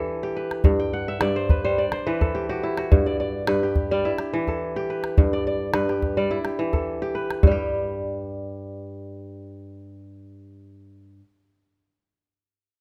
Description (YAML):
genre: west african traditional, West African string and xylophone music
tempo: 106 BPM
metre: 4/4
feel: straight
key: G major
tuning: A4 = 443 Hz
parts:
  - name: kora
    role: arpeggios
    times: 0.0-11.2 s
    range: G2 to G5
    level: -27 LUFS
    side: equal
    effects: none
  - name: calabash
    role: percussion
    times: 0.5-7.7 s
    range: none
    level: -23 LUFS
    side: equal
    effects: none
room: light reverb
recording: close, detailed microphones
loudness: -24 LUFS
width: mono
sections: 0.0-7.4 A section; 7.4-9.7 B section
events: kora fill 0.8-2.9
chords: 0.0 Em; 0.6 G; 1.8 Em; 2.9 G; 4.0 Em; 5.2 G; 6.3 Em; 7.4 G